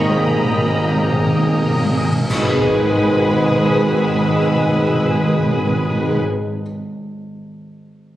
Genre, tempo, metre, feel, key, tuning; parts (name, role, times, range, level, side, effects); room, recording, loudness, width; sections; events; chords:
cinematic, suspense film score; 69 BPM; 5/4; straight; Ab minor; A4 = 440 Hz
warm symphonic violin section; melody; 0.0-6.2 s; Bb4 to Ab5; -33 LUFS; right 1 dB
clear symphonic violin section; second line; 0.0-6.2 s; Cb5 to Cb6; -27 LUFS; left 1 dB
rich symphonic viola section; accompaniment; 0.0-6.2 s; Bb3 to Eb5; -22 LUFS; equal
bright trombone section; sustained chords; 0.0-6.2 s; Ab2 to Eb3; -25 LUFS; right 2 dB
warm French horn section; sustained chords; 0.0-6.2 s; Bb3 to G4; -24 LUFS; left 2 dB
Celtic harp; riff; 0.0-5.7 s; Ab2 to Ab3; -25 LUFS; left 2 dB
clear symphonic double bass section; bass; 0.0-6.2 s; Ab1; -25 LUFS; right 2 dB
rich chamber cello section; bass; 0.0-6.2 s; Ab3 to Bb3; -24 LUFS; right 2 dB
organ-like drone; drone; 0.0-6.2 s; Ab1; -27 LUFS; equal
timpani; percussion; 0.0-6.2 s; Ab2; -21 LUFS; equal
cymbal swell and sub drop; sound effects; 0.6-6.2 s; -30 LUFS; equal
bright grand piano; texture; 0.0-2.3 s; barely audible
rich studio violin section; texture; 0.0-6.1 s; Bb5 to Fb6; -29 LUFS; left 2 dB
clash cymbals and concert bass drum; percussion; 2.3-4.0 s; -30 LUFS; left 1 dB
wet recital hall reverb, RT60 1.4 s; recorded on a phone in the room, club reverb; -14 LUFS; side -14 dB against mid
0.0-2.3 A section; 2.3-6.6 B section
timpani fill 0.0-2.3; cymbal swell 0.6-2.3; band accent 2.3-3.2; impact 2.3-6.6
0.0 Eb/Ab; 2.3 Abm